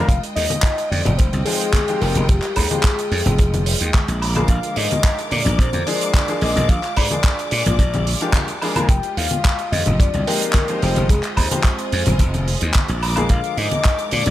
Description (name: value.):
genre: nu-disco, nu disco.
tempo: 109 BPM.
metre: 4/4.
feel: straight.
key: F dorian.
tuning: A4 = 440 Hz.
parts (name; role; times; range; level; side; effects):
clear grand piano; accompaniment; 0.0-14.3 s; D3 to G5; -26 LUFS; left 2 dB; vintage 12-bit sampler grit, sidechain pumping.
rich studio string section; sustained chords; 0.0-14.3 s; Ab3 to D6; -29 LUFS; left 1 dB; sidechain pumping.
soft octave-layered synth lead; melody; 0.1-14.3 s; G4 to Ab5; -25 LUFS; left 2 dB; chorus, analog delay.
slap bass; bass; 0.1-14.3 s; F1 to Bb2; -20 LUFS; equal; none.
damped 70s drum kit; drums; 0.1-14.3 s; handclaps, hi-hat, woodblock; -24 LUFS; right 2 dB; none.
kick drum; drums; 0.1-14.0 s; none; -16 LUFS; equal; none.
congas; percussion; 0.5-14.3 s; none; -26 LUFS; left 2 dB; none.
room: small room ambience.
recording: none.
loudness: -16 LUFS.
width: side -14 dB against mid.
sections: 0.0-14.3 A section.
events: none.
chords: 0.1 Fm9; 4.2 Bb7; 8.9 Fm9; 13.0 Bb7.